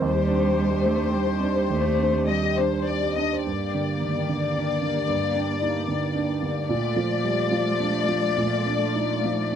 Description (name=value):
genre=neoclassical piano and strings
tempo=101-114 BPM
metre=3/4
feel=rubato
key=G minor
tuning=A4 = 441 Hz
part: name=rich chamber violin section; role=melody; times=0.0-9.6 s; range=C5 to Eb5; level=-26 LUFS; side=left 8 dB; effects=none
part: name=dark cello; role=second line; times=0.0-9.6 s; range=G3 to Bb3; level=-29 LUFS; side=right 2 dB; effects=none
part: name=warm grand piano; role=accompaniment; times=0.0-9.6 s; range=Eb2 to C5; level=-25 LUFS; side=right 4 dB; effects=none
part: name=warm analog pad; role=sustained chords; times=0.0-9.6 s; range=A3 to D5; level=-34 LUFS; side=left 2 dB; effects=chorus, tremolo
room=light reverb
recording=dry, close 1970s-style studio recording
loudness=-22 LUFS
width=side -8 dB against mid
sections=0.0-3.5 A section; 3.5-9.6 B section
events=none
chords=0.0 Cmadd9/Eb; 3.5 Gm; 6.7 Bbmaj7